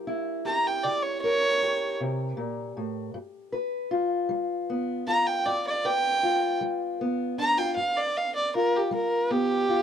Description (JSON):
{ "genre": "acoustic country blues, solo or duo", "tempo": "52 BPM (dotted quarters)", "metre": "12/8", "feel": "straight", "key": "G mixolydian", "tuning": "A4 = 441 Hz", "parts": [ { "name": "fingerpicked steel-string acoustic guitar", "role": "accompaniment", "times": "0.0-9.8 s", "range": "G2 to B4", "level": "-28 LUFS", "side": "left 2 dB", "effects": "none" }, { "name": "dark fiddle", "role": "melody", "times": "0.5-9.8 s", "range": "G4 to Bb5", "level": "-24 LUFS", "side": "right 2 dB", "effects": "none" } ], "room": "small room ambience", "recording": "dry, close 1970s-style studio recording", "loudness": "-24 LUFS", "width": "side -8 dB against mid", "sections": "0.0-9.8 A section", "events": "none", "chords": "0.0 C#dim7; 3.1 G7", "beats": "0.83 1.99 | 3.15 4.30 5.46 6.61 | 7.77 8.92" }